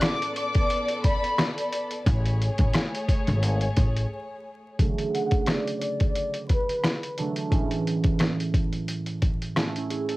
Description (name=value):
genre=hip hop, boom-bap hip-hop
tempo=88 BPM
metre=4/4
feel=swing 56% on 16ths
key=B dorian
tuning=A4 = 437 Hz
part: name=warm studio violin section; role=melody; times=0.0-7.0 s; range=B4 to D6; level=-30 LUFS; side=left 2 dB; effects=high-pass filter, low-pass filter, cassette tape, tape echo
part: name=concert harp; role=accompaniment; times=0.0-10.2 s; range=A2 to A4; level=-29 LUFS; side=right 3 dB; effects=cassette tape, high-pass filter, low-pass filter
part: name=warm studio string section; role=sustained chords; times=0.0-4.8 s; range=A3 to D5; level=-31 LUFS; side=left 1 dB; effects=high-pass filter, low-pass filter, cassette tape
part: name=dusty soul sampler-style drum kit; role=drums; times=0.0-10.2 s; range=hi-hat, kick drum, rim click, snare drum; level=-25 LUFS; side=equal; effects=overdrive, cassette tape
part: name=upright bass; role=bass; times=2.1-4.0 s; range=G#1 to A1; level=-24 LUFS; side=equal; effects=none
room=light reverb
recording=home recording on cassette, vinyl crackle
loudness=-23 LUFS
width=side -19 dB against mid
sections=0.0-4.8 A section; 4.8-10.2 B section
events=break 0.0-4.8; filter sweep 4.8-10.2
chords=0.0 Bm7; 2.1 Amaj7; 4.8 Bm9/C# (rootless); 7.5 Amaj7